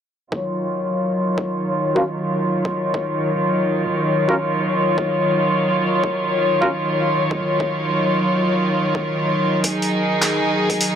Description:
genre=glitch hop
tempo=103 BPM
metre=4/4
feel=swing 63% on 16ths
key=Eb minor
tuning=A4 = 440 Hz
part: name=rich chamber string section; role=sustained chords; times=0.3-11.0 s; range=Eb3 to Db5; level=-18 LUFS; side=equal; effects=sidechain pumping, low-pass filter
part: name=electronic kick drum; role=drums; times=0.3-10.8 s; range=none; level=-27 LUFS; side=equal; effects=overdrive, high-pass filter on kick, small room ambience
part: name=warm horn section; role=stabs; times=2.0-6.7 s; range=Db4 to Bb4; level=-23 LUFS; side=equal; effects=vintage 12-bit sampler grit, sidechain pumping, low-pass filter, analog delay
part: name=boom bap sampler-style drum kit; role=drums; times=9.6-11.0 s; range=handclaps, hi-hat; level=-21 LUFS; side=equal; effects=overdrive, small room ambience
room=light reverb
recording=dry, gritty hardware recording, transformer saturation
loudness=-17 LUFS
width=side -8 dB against mid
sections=0.3-11.0 A section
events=filter sweep on string section 0.3-11.0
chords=0.3 Ebm9

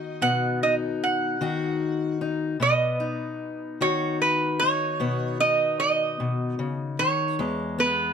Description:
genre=acoustic country blues, solo or duo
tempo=50 BPM (dotted quarters)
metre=12/8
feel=straight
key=unclear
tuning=A4 = 440 Hz
part: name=lap resonator guitar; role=melody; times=0.0-8.1 s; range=B4 to F#5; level=-23 LUFS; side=right 3 dB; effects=none
part: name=fingerpicked steel-string acoustic guitar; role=accompaniment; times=0.0-8.1 s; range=E2 to F#4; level=-27 LUFS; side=left 4 dB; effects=none
room=little or no reverb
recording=close, detailed microphones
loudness=-22 LUFS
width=side -7 dB against mid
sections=0.0-8.1 A section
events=none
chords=0.0 B; 7.4 E

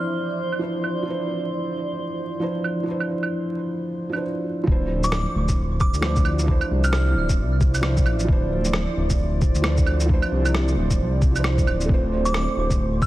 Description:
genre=future garage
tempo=133 BPM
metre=4/4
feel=swing 61% on 16ths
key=D minor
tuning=A4 = 441 Hz
part: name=glassy synth bell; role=melody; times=0.0-0.1, 5.0-7.3, 12.3-13.1 s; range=D6 to F6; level=-29 LUFS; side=right 1 dB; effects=chorus, tremolo, tape echo
part: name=felt-muted upright piano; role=accompaniment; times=0.0-13.1 s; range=F3 to C5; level=-27 LUFS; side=right 1 dB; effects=sidechain pumping, digital delay
part: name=deep dark ambient pad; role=sustained chords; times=0.0-13.1 s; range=E4 to C6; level=-31 LUFS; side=right 2 dB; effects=chorus, built-in reverb, sidechain pumping
part: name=drifting glass-harmonics texture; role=texture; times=0.0-4.2 s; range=C5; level=-37 LUFS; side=left 1 dB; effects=chorus, built-in reverb
part: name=electronic claves, shaker and rim click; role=drums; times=0.5-13.1 s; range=none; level=-28 LUFS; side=right 2 dB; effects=overdrive, low-pass filter on perc, soft clipping on snare, low-pass filter on snare
part: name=dark detuned saw bass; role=bass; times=4.7-13.1 s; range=D1 to D2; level=-22 LUFS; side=equal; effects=sidechain pumping
part: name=electronic kick drum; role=drums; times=4.7-13.1 s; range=none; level=-20 LUFS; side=equal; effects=none
room=light reverb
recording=dense, heavily limited modern master, vinyl crackle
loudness=-20 LUFS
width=side -16 dB against mid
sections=0.0-4.7 A section; 4.7-13.1 B section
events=none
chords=0.0 Dm9; 11.9 F/D

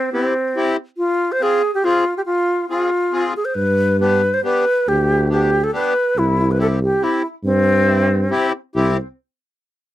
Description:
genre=alpine folk, alpine dance band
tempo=140 BPM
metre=3/4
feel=swing 53% on 8ths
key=C major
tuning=A4 = 440 Hz
part: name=bright alto flute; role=melody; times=0.0-9.0 s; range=C4 to C5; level=-17 LUFS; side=equal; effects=slapback echo
part: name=accordion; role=accompaniment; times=0.1-9.0 s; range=B3 to Ab4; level=-20 LUFS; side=left 2 dB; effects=none
part: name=mellow tuba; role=bass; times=3.6-9.0 s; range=C2 to G2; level=-18 LUFS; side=equal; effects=none
room=light reverb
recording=dry, close 1970s-style studio recording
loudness=-15 LUFS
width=side -14 dB against mid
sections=0.0-8.8 A section; 8.8-9.9 B section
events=none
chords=0.0 C; 1.0 Fm; 3.6 G; 6.2 C

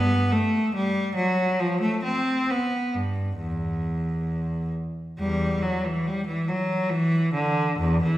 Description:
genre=classical, baroque-style suite movement for unaccompanied cello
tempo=64-71 BPM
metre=3/4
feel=rubato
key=E minor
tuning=A4 = 440 Hz
part: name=clear cello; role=solo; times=0.0-8.2 s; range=E2 to C4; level=-22 LUFS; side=equal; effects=none
room=wet recital hall reverb, RT60 1.7 s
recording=heard from further back in the room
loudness=-23 LUFS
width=side -14 dB against mid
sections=0.0-8.2 A section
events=none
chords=none

